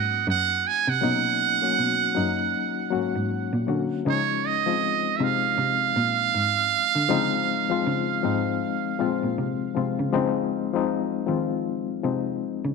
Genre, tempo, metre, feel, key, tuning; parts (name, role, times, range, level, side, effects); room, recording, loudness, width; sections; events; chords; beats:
R&B, neo-soul; 79 BPM; 4/4; swing 59% on 16ths; A4 = 440 Hz
trumpet with metal mute; melody; 0.0-9.4 s; C#5 to G#5; -24 LUFS; right 11 dB
reed electric piano; accompaniment; 0.0-12.7 s; E#3 to F#4; -26 LUFS; left 9 dB; fast tremolo
dark cello; bass; 0.0-12.7 s; F#2 to D#3; -29 LUFS; right 1 dB
moderate echo chamber reverb, RT60 1.5 s, small room ambience; 1960s-style stereo with parts hard left and right; -22 LUFS; side -4 dB against mid
0.0-10.1 A section; 10.1-12.7 B section
0.0 Bmaj9; 4.1 C#maj9
0.26 | 1.02 1.78 2.54 3.30 | 4.05 4.82 5.57 6.33 | 7.09 7.85 8.61 9.37 | 10.13 10.89 11.65 12.41